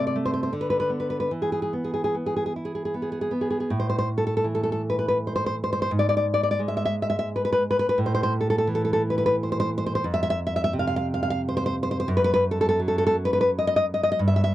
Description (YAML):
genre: romantic piece for solo classical guitar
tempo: 72-90 BPM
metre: 3/4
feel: rubato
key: A minor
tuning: A4 = 440 Hz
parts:
  - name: nylon-string guitar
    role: solo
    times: 0.0-14.5 s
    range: F2 to F5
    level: -22 LUFS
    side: equal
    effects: none
room: little or no reverb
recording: dry, close 1970s-style studio recording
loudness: -22 LUFS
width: side -14 dB against mid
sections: 0.0-3.7 A section; 3.7-14.5 B section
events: none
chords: 0.0 Am/C; 0.5 Bm/D; 1.3 E5; 3.7 A5; 5.9 N.C.; 8.0 A5; 10.1 F5; 12.1 N.C.